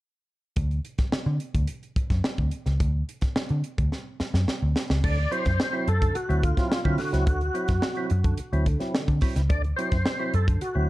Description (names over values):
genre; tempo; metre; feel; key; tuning
funk; 108 BPM; 4/4; straight; D mixolydian; A4 = 440 Hz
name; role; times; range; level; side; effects
vintage muted picked electric bass; bass; 0.6-10.9 s; C#2 to D3; -24 LUFS; equal; none
crisp fusion drum kit; drums; 0.6-10.7 s; crash cymbal, hi-hat, kick drum, snare drum; -27 LUFS; equal; none
tonewheel organ; melody; 5.0-10.9 s; F4 to D5; -29 LUFS; equal; overdrive, chorus vibrato, slow rotary speaker, analog delay
percussive tonewheel organ; stabs; 5.0-10.9 s; D3 to E4; -32 LUFS; right 2 dB; overdrive, slow rotary speaker
room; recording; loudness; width
little or no reverb; cassette tape; -23 LUFS; side -17 dB against mid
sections
0.6-5.0 A section; 5.0-10.9 B section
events
drum fill 3.9-5.0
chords
0.6 N.C.; 5.0 D9